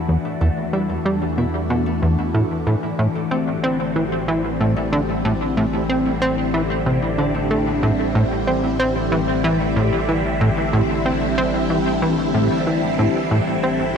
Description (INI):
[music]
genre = ambient, sequencer-driven space music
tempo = 93 BPM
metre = 4/4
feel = straight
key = A dorian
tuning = A4 = 440 Hz
[part]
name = phased string machine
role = sustained chords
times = 0.0-14.0 s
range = D3 to F#4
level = -22 LUFS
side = equal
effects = ensemble chorus, phaser
[part]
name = concert harp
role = arpeggios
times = 0.0-14.0 s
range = E3 to E4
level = -26 LUFS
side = left 7 dB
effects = auto-pan, tape echo
[part]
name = analog drone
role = bass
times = 0.7-14.0 s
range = A1 to E2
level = -30 LUFS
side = equal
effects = chorus
[part]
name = plucky analog bass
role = riff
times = 0.1-13.9 s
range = E2 to C4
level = -20 LUFS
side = right 1 dB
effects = tape echo
[sound]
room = moderate huge ambient reverb, RT60 8.2 s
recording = none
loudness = -17 LUFS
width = side -7 dB against mid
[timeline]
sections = 0.0-14.0 A section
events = none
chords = 0.0 Em7; 2.7 Am